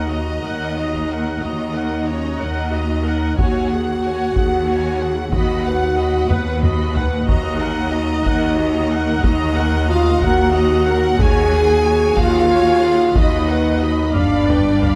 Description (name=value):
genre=cinematic, epic orchestral film score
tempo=61 BPM (dotted quarters)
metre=6/8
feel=straight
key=Eb minor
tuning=A4 = 443 Hz
part: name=rich studio violin section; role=melody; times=0.0-15.0 s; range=Gb5 to B5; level=-35 LUFS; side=equal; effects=none
part: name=clear chamber violin section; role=second line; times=0.0-15.0 s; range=B4 to Ab5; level=-30 LUFS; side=equal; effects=none
part: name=rich symphonic viola section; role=accompaniment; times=0.0-15.0 s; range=Gb4 to Gb5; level=-27 LUFS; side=equal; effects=none
part: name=warm French horn section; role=sustained chords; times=0.0-15.0 s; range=B3 to Ab4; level=-21 LUFS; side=equal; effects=none
part: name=rich symphonic cello section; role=bass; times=0.0-15.0 s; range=Eb2 to G2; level=-26 LUFS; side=equal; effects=none
part: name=rich symphonic double bass section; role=bass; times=0.0-15.0 s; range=G1 to Eb2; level=-26 LUFS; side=equal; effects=none
part: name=taiko ensemble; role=drums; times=0.9-15.0 s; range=none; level=-23 LUFS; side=equal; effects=none
room=moderate scoring stage reverb, RT60 1.8 s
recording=none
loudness=-17 LUFS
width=mono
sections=0.0-15.0 A section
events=drum fill 6.3-7.3, 14.2-15.0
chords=0.0 Ebm; 3.4 Dbsus4/Eb; 5.3 B/D#; 7.3 Ebm; 11.2 Dbsus4/Eb; 13.2 B/D#; 14.2 G7